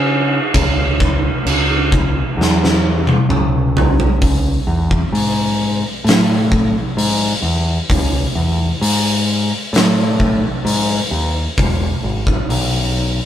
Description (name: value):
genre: stoner and doom metal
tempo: 65 BPM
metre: 4/4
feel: straight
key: C# minor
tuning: A4 = 441 Hz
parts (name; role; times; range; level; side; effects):
- growling picked electric bass; bass; 0.0-13.2 s; E1 to C#3; -17 LUFS; left 1 dB; overdrive
- oversized low-tuned drum kit; drums; 0.5-12.7 s; crash cymbal, hi-hat, kick drum, snare drum, toms; -16 LUFS; equal; none
room: light reverb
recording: band playing live in one room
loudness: -14 LUFS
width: side -10 dB against mid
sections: 0.0-4.2 A section; 4.2-13.3 B section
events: drum fill 2.4-4.2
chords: none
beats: | 0.54 1.46 2.38 3.30 | 4.22 5.14 6.06 6.98 | 7.90 8.82 9.74 10.66 | 11.57 12.49